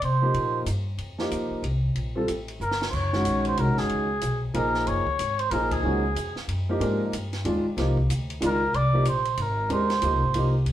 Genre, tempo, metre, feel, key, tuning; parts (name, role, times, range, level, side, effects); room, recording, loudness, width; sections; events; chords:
modal jazz; 186 BPM; 3/4; swing 62% on 8ths; Gb lydian; A4 = 440 Hz
trumpet with cup mute; melody; 0.0-6.4, 8.5-10.5 s; Ab4 to D5; -26 LUFS; right 1 dB
upright bass; bass; 0.0-10.7 s; Gb1 to C3; -27 LUFS; equal
compact cocktail drum kit; drums; 0.0-10.7 s; crash cymbal, hi-hat, kick drum, ride cymbal, snare drum; -36 LUFS; equal
warm grand piano; accompaniment; 0.2-10.5 s; Eb3 to Bb4; -27 LUFS; equal
wet studio reverb, RT60 0.7 s; band playing live in one room; -23 LUFS; side -12 dB against mid
0.0-2.9 A section; 2.9-10.7 B section
drum fill 2.6-2.9; band accent 5.7
0.0 F9sus4; 2.9 Gbmaj9; 6.8 Abmaj9